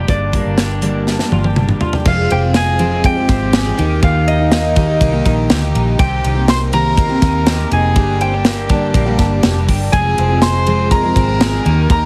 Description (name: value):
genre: jangly indie pop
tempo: 122 BPM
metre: 4/4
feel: straight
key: F dorian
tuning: A4 = 440 Hz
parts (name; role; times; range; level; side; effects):
- concert harp; melody; 0.0-12.1 s; D5 to C6; -22 LUFS; equal; plate reverb
- brilliant trumpet; second line; 0.0-12.1 s; D4 to C5; -29 LUFS; equal; plate reverb
- picked steel-string acoustic guitar; accompaniment; 0.0-12.1 s; F2 to Ab4; -22 LUFS; equal; plate reverb
- electric guitar through a small old amp; arpeggios; 0.0-12.1 s; F2 to Ab4; -26 LUFS; equal; analog chorus, plate reverb, tape echo
- vintage muted fingered electric bass; bass; 0.0-12.1 s; F1 to Eb2; -20 LUFS; equal; none
- modern studio drum kit; drums; 0.1-12.0 s; crash cymbal, hi-hat, kick drum, ride cymbal, snare drum, toms; -19 LUFS; equal; none
room: light reverb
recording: heavily compressed radio sound, multiband compression, vinyl crackle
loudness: -14 LUFS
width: mono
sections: 0.0-2.1 A section; 2.1-12.1 B section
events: drum fill 1.1-2.1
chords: 0.0 Gm; 2.1 Fm; 3.8 Eb; 6.0 Cm7; 8.0 Gm; 9.9 Fm